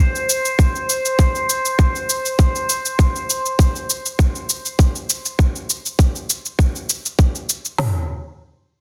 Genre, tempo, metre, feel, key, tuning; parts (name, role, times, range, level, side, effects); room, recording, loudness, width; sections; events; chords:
organic downtempo; 100 BPM; 4/4; straight; A4 = 441 Hz
drifting glass-harmonics texture; texture; 0.0-3.0 s; C5; -26 LUFS; equal; chorus, built-in reverb
cabasa; drums; 0.2-7.8 s; -24 LUFS; equal
organic electronic drum kit; drums; 0.6-7.9 s; hi-hat, kick drum, snare drum, toms; -18 LUFS; equal
light reverb; dense, heavily limited modern master; -19 LUFS; mono
0.0-7.8 A section; 7.8-8.8 B section